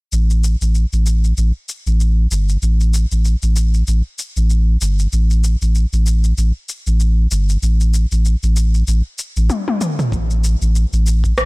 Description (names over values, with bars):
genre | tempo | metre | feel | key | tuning
organic downtempo | 96 BPM | 4/4 | swing 57% on 16ths | unclear | A4 = 441 Hz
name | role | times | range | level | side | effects
warm sub bass | bass | 0.1-11.5 s | G1 to A1 | -14 LUFS | equal | tube saturation, sidechain pumping
organic electronic drum kit | drums | 0.1-11.5 s | rim click, shaker, toms | -24 LUFS | left 2 dB | overdrive
electronic kick drum | drums | 10.1-11.3 s | none | -20 LUFS | equal | none
room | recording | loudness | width
digital ambience | blown-out, overdriven recording, overdrive | -14 LUFS | side -25 dB against mid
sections
0.1-10.1 A section; 10.1-11.5 B section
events
drum fill 9.5-10.1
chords
none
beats
| 0.12 0.75 1.37 2.00 | 2.62 3.25 3.87 4.50 | 5.12 5.75 6.37 7.00 | 7.62 8.25 8.87 9.50 | 10.12 10.75 11.37